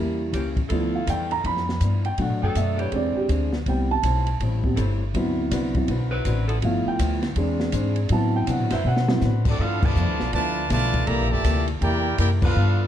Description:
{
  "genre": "jazz, big band swing",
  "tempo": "162 BPM",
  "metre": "4/4",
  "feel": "swing 63% on 8ths",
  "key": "G major",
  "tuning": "A4 = 439 Hz",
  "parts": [
    { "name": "dark upright piano", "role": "accompaniment", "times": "0.0-9.5 s", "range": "F3 to B5", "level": "-25 LUFS", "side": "right 2 dB", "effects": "none" },
    { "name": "fingerpicked steel-string acoustic guitar", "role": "accompaniment", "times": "0.0-12.8 s", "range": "G2 to B4", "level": "-32 LUFS", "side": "left 6 dB", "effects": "none" },
    { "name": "upright bass", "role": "bass", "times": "0.0-12.9 s", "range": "G1 to C3", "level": "-24 LUFS", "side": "equal", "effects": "none" },
    { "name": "mellow saxophone section", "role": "sustained chords", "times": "0.3-12.9 s", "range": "E3 to C5", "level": "-34 LUFS", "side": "equal", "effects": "none" },
    { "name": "open jazz drum kit", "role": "drums", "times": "0.3-12.5 s", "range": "crash cymbal, hi-hat, kick drum, ride cymbal, snare drum", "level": "-29 LUFS", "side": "equal", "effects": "none" },
    { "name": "clear trumpet section", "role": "melody", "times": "9.5-12.9 s", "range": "C4 to Bb5", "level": "-26 LUFS", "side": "right 2 dB", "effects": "none" },
    { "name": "clear trombone section", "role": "second line", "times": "9.5-12.9 s", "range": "Bb2 to G4", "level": "-29 LUFS", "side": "right 2 dB", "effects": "none" }
  ],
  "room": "light reverb",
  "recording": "dark, warm production",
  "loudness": "-20 LUFS",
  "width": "side -10 dB against mid",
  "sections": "0.0-9.6 A section; 9.6-12.9 B section",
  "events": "upright piano solo 0.0-9.6; drum fill 8.9-9.2; band accent 9.8, 12.4",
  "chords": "0.0 C#dim7; 0.7 G13; 2.2 Bm7; 2.9 E7alt; 3.7 Am7; 5.1 D13; 6.6 G13; 7.4 Eaug7; 8.1 D13; 9.6 G13; 11.1 C13"
}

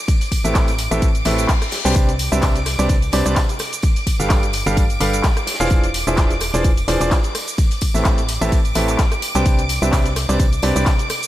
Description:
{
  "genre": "piano house",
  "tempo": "128 BPM",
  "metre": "4/4",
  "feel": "swing 55% on 16ths",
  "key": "C major",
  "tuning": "A4 = 441 Hz",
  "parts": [
    { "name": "string machine, violins", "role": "sustained chords", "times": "0.0-11.3 s", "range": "D6", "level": "-27 LUFS", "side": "equal", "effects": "ensemble chorus, sidechain pumping" },
    { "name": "electronic kick drum", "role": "drums", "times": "0.1-11.0 s", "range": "none", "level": "-17 LUFS", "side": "equal", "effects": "studio reverb" },
    { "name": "house drum kit", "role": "drums", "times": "0.1-11.3 s", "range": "handclaps, hi-hat, rim click, shaker", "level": "-25 LUFS", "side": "equal", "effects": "studio reverb" },
    { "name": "raw garage drum kit", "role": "drums", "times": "0.1-11.2 s", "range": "hi-hat, snare drum", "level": "-32 LUFS", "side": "left 1 dB", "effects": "sidechain pumping on hats, high-pass filter on hats, studio reverb, high-pass filter on snare, high-pass filter on room" },
    { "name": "tambourine", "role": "percussion", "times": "0.1-11.3 s", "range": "none", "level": "-32 LUFS", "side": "right 5 dB", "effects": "none" },
    { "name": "clear baby grand piano", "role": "riff", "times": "0.4-10.9 s", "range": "A2 to G5", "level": "-22 LUFS", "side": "right 1 dB", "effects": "sidechain pumping, digital delay" },
    { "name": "organ-like FM bass", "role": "bass", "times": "0.4-10.9 s", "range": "E1 to C2", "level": "-22 LUFS", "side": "equal", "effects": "sidechain pumping" },
    { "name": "reverse cymbal", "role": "sound effects", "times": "1.2-2.0 s", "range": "none", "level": "-28 LUFS", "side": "left 8 dB", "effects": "none" }
  ],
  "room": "small room ambience",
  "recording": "none",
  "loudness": "-15 LUFS",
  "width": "side -14 dB against mid",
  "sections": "0.0-11.3 A section",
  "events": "reverse cymbal 1.2-2.0",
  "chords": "0.1 Am9; 2.0 Cmaj9; 3.6 G9; 5.7 E7b9b13; 7.6 Am9; 9.5 Cmaj9"
}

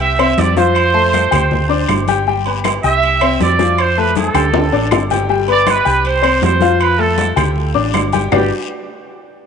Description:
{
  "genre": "latin, salsa",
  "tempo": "158 BPM",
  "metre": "4/4",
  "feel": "straight",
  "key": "G major",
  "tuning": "A4 = 441 Hz",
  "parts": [
    { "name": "bright trumpet section", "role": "melody", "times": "0.0-8.5 s", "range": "G4 to E5", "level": "-16 LUFS", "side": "right 5 dB", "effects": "none" },
    { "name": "bright upright piano", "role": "accompaniment", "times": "0.0-8.5 s", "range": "F3 to G6", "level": "-17 LUFS", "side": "left 9 dB", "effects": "none" },
    { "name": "hollow-body short-scale fingered electric bass", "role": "bass", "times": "0.0-8.5 s", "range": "G1 to F2", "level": "-18 LUFS", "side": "right 2 dB", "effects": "none" },
    { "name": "agogo bells and timbales", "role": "percussion", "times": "0.0-8.4 s", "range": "none", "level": "-22 LUFS", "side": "right 14 dB", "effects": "none" },
    { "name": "congas", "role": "percussion", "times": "0.0-8.4 s", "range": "none", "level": "-22 LUFS", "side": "left 9 dB", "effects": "none" },
    { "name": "guiro", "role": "percussion", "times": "0.0-8.4 s", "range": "none", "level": "-32 LUFS", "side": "left 11 dB", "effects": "none" },
    { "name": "claves", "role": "percussion", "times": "0.2-8.4 s", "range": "none", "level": "-27 LUFS", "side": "left 10 dB", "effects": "none" }
  ],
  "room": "moderate plate reverb, RT60 3.1 s",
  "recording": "1960s-style stereo with parts hard left and right, nothing above 10.7 kHz",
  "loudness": "-12 LUFS",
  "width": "side -6 dB against mid",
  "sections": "0.0-5.3 A section; 5.3-8.3 B section; 8.3-9.5 C section",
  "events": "drum fill 4.2-5.3",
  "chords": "0.0 C5; 0.8 F; 1.5 D7sus4; 2.3 G; 3.0 C; 3.8 F; 4.5 Dsus4; 5.3 G; 6.0 C5; 6.8 F; 7.6 Dsus4; 8.3 Gmaj7"
}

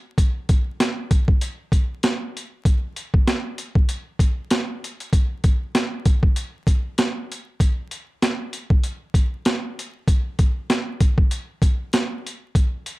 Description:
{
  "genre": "hip hop",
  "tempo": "97 BPM",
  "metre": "4/4",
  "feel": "swing 56% on 16ths",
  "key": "none",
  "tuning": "none",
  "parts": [
    { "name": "boom bap sampler-style drum kit", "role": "drums", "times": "0.2-13.0 s", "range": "hi-hat, kick drum, snare drum", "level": "-18 LUFS", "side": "equal", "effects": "overdrive" }
  ],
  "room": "little or no reverb",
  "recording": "vinyl crackle",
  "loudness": "-19 LUFS",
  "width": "side -20 dB against mid",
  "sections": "0.0-13.0 A section",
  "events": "none",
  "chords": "none"
}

